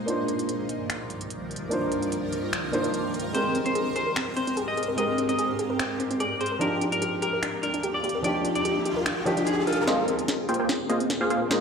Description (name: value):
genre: future bass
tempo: 147 BPM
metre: 4/4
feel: half-time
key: Eb major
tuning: A4 = 440 Hz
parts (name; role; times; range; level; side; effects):
- shimmering ambient pad; sustained chords; 0.0-11.6 s; C2 to D5; -32 LUFS; equal; chorus, built-in reverb, phaser
- dark grand piano; accompaniment; 0.1-11.6 s; F3 to C5; -29 LUFS; equal; ping-pong delay
- trap drum kit; drums; 0.1-11.6 s; finger snaps, hi-hat, snare drum; -32 LUFS; equal; none
- clean electric guitar; melody; 3.3-9.8 s; F4 to Eb5; -30 LUFS; left 1 dB; analog chorus, tape echo
- soft round pluck; arpeggios; 3.3-11.5 s; C4 to Bb4; -31 LUFS; equal; chorus, cassette tape, ping-pong delay
- riser; sound effects; 7.7-11.6 s; none; -33 LUFS; equal; none
- supersaw stab; riff; 9.9-11.6 s; Bb3 to G5; -25 LUFS; equal; phaser, low-pass filter, ping-pong delay
room: wet plate reverb, RT60 1.4 s, digital ambience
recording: dreamy mix soaked in reverb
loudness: -24 LUFS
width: side -6 dB against mid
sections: 0.0-9.9 A section; 9.9-11.6 B section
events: riser 7.7-9.9, 9.9-11.6; build-up 9.9-11.6; drum fill 9.9-11.6; filter sweep on supersaw synth 9.9-11.6; filter sweep on ambient pad 9.9-11.6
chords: 0.0 Cm11; 3.1 Abmaj9; 6.6 Ebmaj9; 9.9 Bb9sus4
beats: | 0.08 0.49 0.90 1.30 | 1.71 2.12 2.53 2.94 | 3.35 3.75 4.16 4.57 | 4.98 5.39 5.79 6.20 | 6.61 7.02 7.43 7.83 | 8.24 8.65 9.06 9.47 | 9.88 10.28 10.69 11.10 | 11.51